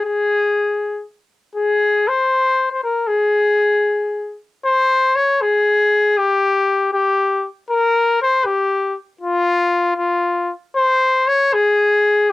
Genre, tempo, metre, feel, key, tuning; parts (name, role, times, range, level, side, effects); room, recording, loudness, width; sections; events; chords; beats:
mexican folk; 78 BPM (dotted quarters); 6/8; straight; Ab major; A4 = 440 Hz
warm trumpet; solo; 0.0-12.3 s; F4 to Db5; -15 LUFS; left 2 dB; cassette tape
light reverb; home recording on cassette; -15 LUFS; side -17 dB against mid
0.0-4.6 A section; 4.6-12.3 B section
| 0.01 0.78 | 1.55 2.32 | 3.10 3.87 | 4.64 5.40 | 6.17 6.92 | 7.68 8.44 | 9.20 9.97 | 10.74 11.51 | 12.27